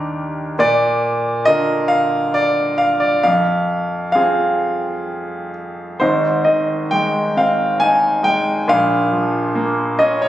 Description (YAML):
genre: classical, lyrical solo piano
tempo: 67 BPM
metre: 3/4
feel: rubato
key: F dorian, Ab major from 6.0 s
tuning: A4 = 440 Hz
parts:
  - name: bright concert grand piano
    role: solo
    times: 0.0-10.3 s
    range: Ab1 to Ab5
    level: -15 LUFS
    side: equal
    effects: none
room: moderate recital hall reverb, RT60 1.5 s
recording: recorded on a phone in the room, club reverb, compression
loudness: -15 LUFS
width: side -13 dB against mid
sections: 0.0-6.0 A section; 6.0-10.3 B section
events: none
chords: 0.0 Ebmaj7; 0.6 Bb; 3.2 Fm; 6.0 Ab; 8.7 Bbm